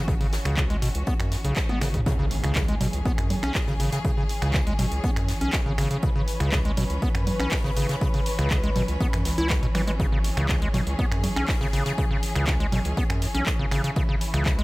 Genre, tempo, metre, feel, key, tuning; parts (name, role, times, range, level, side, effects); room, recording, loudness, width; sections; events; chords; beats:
acid house; 121 BPM; 4/4; straight; C# minor; A4 = 440 Hz
clear studio string section; sustained chords; 0.0-14.6 s; E3 to B4; -33 LUFS; left 1 dB; sidechain pumping
acid bass, square; riff; 0.0-14.6 s; B2 to E4; -28 LUFS; equal; overdrive, sidechain pumping, tape echo
round analog bass; bass; 0.0-14.6 s; G#1 to F#2; -28 LUFS; equal; sidechain pumping
electronic kick drum; drums; 0.1-14.6 s; -26 LUFS; equal
jazz brush drum kit; drums; 0.1-14.6 s; hi-hat, snare drum; -40 LUFS; left 2 dB; high-pass filter on hats, high-pass filter on snare, high-pass filter on room
punchy analog drum machine; drums; 0.2-14.6 s; congas, finger snaps, handclaps, hi-hat, toms; -31 LUFS; right 1 dB
impact; sound effects; 2.1-4.0 s; -35 LUFS; equal
small room reverb; -22 LUFS; side -20 dB against mid
0.0-2.1 A section; 2.1-14.6 B section
band accent 1.6; drum fill 1.7-2.1; drop 2.1-14.6; impact 2.1-4.0
0.0 C#m
| 0.08 0.58 1.07 1.57 | 2.06 2.56 3.06 3.55 | 4.05 4.54 5.04 5.53 | 6.03 6.53 7.02 7.52 | 8.01 8.51 9.01 9.50 | 10.00 10.49 10.99 11.48 | 11.98 12.48 12.97 13.47 | 13.96 14.46